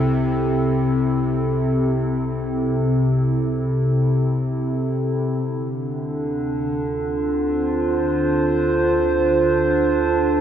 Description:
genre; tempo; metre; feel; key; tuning
ambient; free time; none; none; unclear; A4 = 440 Hz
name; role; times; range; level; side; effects
warbly tape-like pad; sustained chords; 0.0-10.4 s; C3 to C5; -18 LUFS; equal; chorus, built-in reverb
warm sub bass; bass; 0.0-10.4 s; C2 to D2; -34 LUFS; equal; none
bowed-like drone; drone; 0.0-5.5 s; C3; -29 LUFS; equal; built-in reverb
room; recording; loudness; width
wet cathedral reverb, RT60 6.3 s; in a vast, echoing space; -18 LUFS; side -9 dB against mid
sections
0.0-5.4 A section; 5.4-10.4 B section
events
fade-in on sub bass 5.4-10.4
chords
0.0 C6; 5.4 Dm7

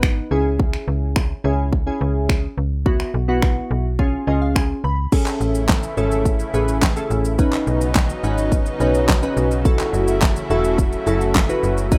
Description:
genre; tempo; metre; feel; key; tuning
dance-pop; 106 BPM; 4/4; straight; F# dorian; A4 = 440 Hz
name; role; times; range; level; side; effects
glassy digital keys; accompaniment; 0.0-12.0 s; B3 to B5; -25 LUFS; equal; chorus, phaser, sidechain pumping, plate reverb
slap-like FM bass; bass; 0.0-12.0 s; E1 to C#2; -24 LUFS; equal; sidechain pumping
pop drum kit; drums; 0.0-12.0 s; crash cymbal, finger snaps, handclaps, hi-hat, kick drum, shaker, snare drum; -21 LUFS; equal; none
lush unison pad; sustained chords; 5.1-12.0 s; C#3 to E4; -27 LUFS; equal; chorus, sidechain pumping
room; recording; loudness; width
light reverb; rough home demo mix; -19 LUFS; mono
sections
0.0-5.1 A section; 5.1-12.0 B section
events
synth keys fill 4.0-5.1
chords
0.3 C#m; 2.9 Bsus4; 4.0 C#; 5.1 Amaj7; 7.4 Badd9; 9.7 F#m7

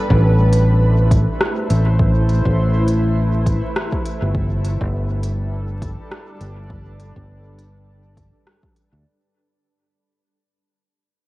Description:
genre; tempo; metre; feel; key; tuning
ambient dub; 102 BPM; 4/4; swing 56% on 16ths; unclear; A4 = 440 Hz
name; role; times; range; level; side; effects
granular cloud pad; sustained chords; 0.0-9.1 s; G3 to C5; -24 LUFS; equal; built-in reverb, cassette tape
fingered electric bass; bass; 0.1-9.0 s; G1 to D2; -16 LUFS; equal; none
electronic kick drum; drums; 0.1-8.7 s; none; -22 LUFS; equal; overdrive, cassette tape
organic electronic drum kit; drums; 0.5-8.9 s; hi-hat, rim click; -25 LUFS; equal; cassette tape, dub echo
room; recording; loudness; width
digital ambience; home recording on cassette, vinyl crackle; -15 LUFS; side -18 dB against mid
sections
0.0-9.1 A section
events
fade-out 0.0-9.1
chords
0.0 Amadd9; 4.3 G

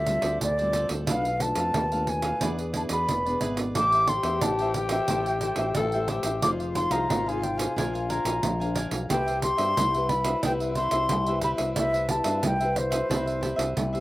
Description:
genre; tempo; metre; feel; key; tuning
samba and choro; 90 BPM; 4/4; straight; C major; A4 = 440 Hz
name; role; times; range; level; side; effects
wooden flute; melody; 0.0-13.8 s; C5 to D6; -26 LUFS; equal; none
cavaquinho; accompaniment; 0.0-14.0 s; D4 to Ab5; -34 LUFS; right 1 dB; none
nylon-string guitar; accompaniment; 0.0-14.0 s; A2 to C5; -33 LUFS; left 1 dB; slapback echo
fingered electric bass with an envelope filter; bass; 0.0-14.0 s; E1 to G2; -32 LUFS; equal; none
pandeiro; percussion; 0.1-14.0 s; none; -30 LUFS; right 3 dB; none
growling tenor saxophone; second line; 3.8-14.0 s; E4 to A4; -32 LUFS; left 4 dB; slapback echo
room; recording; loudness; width
little or no reverb; recorded outdoors, with no room sound; -23 LUFS; side -17 dB against mid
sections
0.0-14.0 A section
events
none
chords
0.0 Dm11; 1.1 Bm7b5; 2.4 E7; 3.8 Am7; 6.4 Fm7; 7.8 Bb9; 9.1 Cmaj7

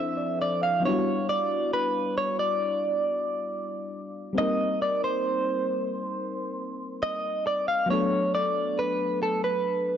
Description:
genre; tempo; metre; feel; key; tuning
R&B; 68 BPM; 4/4; straight; unclear; A4 = 440 Hz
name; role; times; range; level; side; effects
direct-recorded clean electric guitar; melody; 0.0-10.0 s; A4 to F5; -26 LUFS; right 1 dB; wide subtle chorus, analog delay
mellow FM electric piano; accompaniment; 0.0-10.0 s; F3 to F5; -30 LUFS; left 2 dB; chorus
room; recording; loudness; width
light reverb; dry, gritty hardware recording, transformer saturation, cassette tape, nothing above 7.7 kHz; -24 LUFS; side -9 dB against mid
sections
0.8-10.0 A section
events
none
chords
0.0 Dm9; 0.8 Em7; 4.4 Cm7; 7.9 Bm7

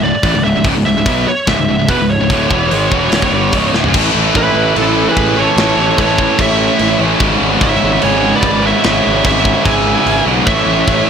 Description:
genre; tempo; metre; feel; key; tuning
heavy metal; 147 BPM; 4/4; straight; C# phrygian; A4 = 439 Hz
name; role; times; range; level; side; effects
high-gain lead guitar; melody; 0.0-11.1 s; A4 to G#5; -17 LUFS; right 3 dB; distortion, digital delay
high-gain distorted guitar; riff; 0.0-11.1 s; C#2 to B3; -16 LUFS; left 13 dB; distortion
tight distorted guitar; riff; 0.0-11.1 s; C#2 to B3; -17 LUFS; right 13 dB; distortion
fuzz picked electric bass; bass; 0.0-11.0 s; C#1 to B1; -18 LUFS; equal; overdrive
tight metal drum kit; drums; 0.2-11.0 s; crash cymbal, hi-hat, kick drum, snare drum, toms; -18 LUFS; equal; soft clipping on kick
high-gain lead guitar; second line; 4.3-11.1 s; E4 to E5; -20 LUFS; right 4 dB; distortion
room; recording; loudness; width
small room reverb; blown-out, overdriven recording, overdrive; -10 LUFS; side -7 dB against mid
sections
0.0-3.9 A section; 3.9-11.1 B section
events
drum fill 3.7; half time 3.9-11.1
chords
0.0 C#m; 3.9 A; 7.2 C#m/G#; 10.5 A

